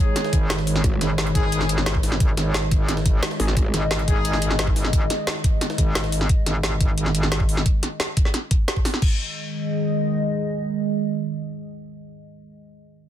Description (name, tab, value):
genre	dark technical drum and bass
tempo	176 BPM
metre	4/4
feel	straight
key	unclear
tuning	A4 = 440 Hz
part	dark analog pad	sustained chords	0.0-12.5 s	D#3 to D#5	-27 LUFS	right 1 dB	chorus, phaser, sidechain pumping
part	warm brass ensemble	stabs	0.0-4.5 s	G#3 to G#4	-30 LUFS	left 4 dB	ping-pong delay
part	drum and bass drum kit	drums	0.2-9.1 s	crash cymbal, hi-hat, snare drum	-25 LUFS	equal	soft clipping on snare
part	jungle sampler-style drum kit	drums	0.2-6.2 s	hi-hat, snare drum	-33 LUFS	equal	high-pass filter on hats, high-pass filter on snare, high-pass filter on room
part	metallic wobble bass	bass	0.3-7.6 s	G#1	-23 LUFS	equal	chorus
part	electronic kick drum	drums	0.3-9.1 s	none	-20 LUFS	equal	none
part	growl bass	bass	0.8-1.0, 3.4-3.7 s	G#1	-23 LUFS	equal	chorus, overdrive
room	light reverb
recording	dense, heavily limited modern master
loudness	-19 LUFS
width	side -11 dB against mid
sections	0.0-9.0 A section; 9.0-11.7 B section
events	drop 0.0-9.0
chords	0.0 G#5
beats	0.16 0.50 | 0.84 1.18 1.52 1.86 | 2.20 2.54 2.89 3.23 | 3.57 3.91 4.25 4.59 | 4.93 5.27 5.61 5.95 | 6.29 6.64 6.98 7.32 | 7.66 8.00 8.34 8.68 | 9.02 9.36 9.70 10.04 | 10.39 10.73 11.07 11.41